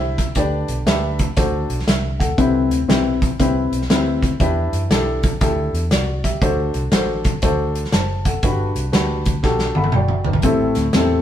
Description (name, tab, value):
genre	uptempo gospel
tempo	119 BPM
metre	4/4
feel	swing 65% on 8ths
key	G major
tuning	A4 = 441 Hz
part	warm baby grand piano	accompaniment	0.0-11.2 s	G2 to B5	-20 LUFS	left 2 dB	none
part	vintage muted fingered electric bass	bass	0.0-11.2 s	F#1 to F#2	-23 LUFS	equal	none
part	natural country drum kit	drums	0.2-11.1 s	hi-hat, kick drum, snare drum, toms	-20 LUFS	equal	none
room	moderate stone room reverb, RT60 1.3 s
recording	band playing live in one room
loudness	-16 LUFS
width	side -10 dB against mid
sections	0.0-11.2 A section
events	drum fill 9.4-10.4; grand piano fill 9.4-10.4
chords	0.4 G; 1.4 D7; 2.4 Cmaj7; 6.4 D7; 8.4 Gmaj7; 10.4 Am7